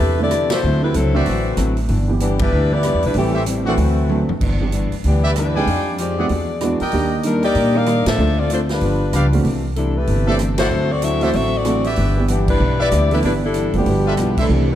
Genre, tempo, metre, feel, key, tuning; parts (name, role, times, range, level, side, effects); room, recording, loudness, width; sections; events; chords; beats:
jazz, big band swing; 190 BPM; 4/4; swing 62% on 8ths; G major; A4 = 440 Hz
warm saxophone section; melody; 0.0-14.8 s; E3 to F5; -21 LUFS; left 3 dB
archtop guitar, miked and amplified; accompaniment; 0.0-14.7 s; G2 to G4; -26 LUFS; left 2 dB
upright bass; bass; 0.0-14.8 s; F#1 to Bb2; -19 LUFS; equal
warm concert grand piano; accompaniment; 0.2-14.7 s; D3 to A4; -24 LUFS; right 4 dB
swinging big-band drum kit; drums; 0.3-14.4 s; crash cymbal, hi-hat, kick drum, ride cymbal, rim click, snare drum, toms; -27 LUFS; right 1 dB
clear trumpet section; stabs; 0.5-14.5 s; Eb4 to Ab5; -26 LUFS; right 1 dB
dark trombone section; second line; 13.8-14.8 s; A2 to B3; -22 LUFS; right 4 dB
light reverb; dark, warm production; -15 LUFS; side -11 dB against mid
0.0-4.4 A section; 4.4-14.5 A section
band accent 0.5, 2.4, 8.0, 10.6, 12.4, 14.3; drum fill 4.1-4.4
0.0 C69; 0.6 D9; 1.9 G6; 3.2 Am7; 3.8 D9; 4.4 G6; 5.7 Fm9; 6.3 E9; 6.9 Ebmaj7; 8.2 Dm7; 8.8 G7; 9.4 C69; 10.7 D9; 12.0 G6; 13.9 G13
0.00 0.32 | 0.63 0.94 1.26 1.57 | 1.89 2.21 2.52 2.84 | 3.15 3.47 3.78 4.10 | 4.41 4.72 5.04 5.36 | 5.67 5.99 6.30 6.62 | 6.93 7.25 7.56 7.88 | 8.19 8.51 8.82 9.13 | 9.45 9.77 10.08 10.40 | 10.71 11.03 11.34 11.66 | 11.97 12.29 12.60 12.92 | 13.23 13.55 13.87 14.18 | 14.50